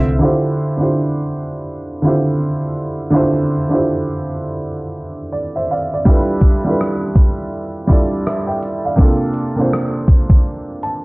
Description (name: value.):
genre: lo-fi hip hop.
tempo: 82 BPM.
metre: 4/4.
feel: swing 60% on 16ths.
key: D minor.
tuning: A4 = 440 Hz.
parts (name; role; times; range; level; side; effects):
warm upright piano; accompaniment; 0.0-11.0 s; C3 to A5; -17 LUFS; right 1 dB; none.
dusty soul sampler-style drum kit; drums; 6.1-11.0 s; hi-hat, kick drum, rim click; -13 LUFS; equal; none.
room: light reverb.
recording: dry, gritty hardware recording, vinyl crackle, low-pass filter.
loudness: -14 LUFS.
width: side -24 dB against mid.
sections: 0.2-11.0 A section.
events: filter sweep 0.2-11.0.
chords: 0.2 Dm11; 6.1 G13; 9.0 C13sus4.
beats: | 0.21 0.94 1.67 2.41 | 3.14 3.87 4.60 5.33 | 6.07 6.80 7.53 8.26 | 8.99 9.72 10.46.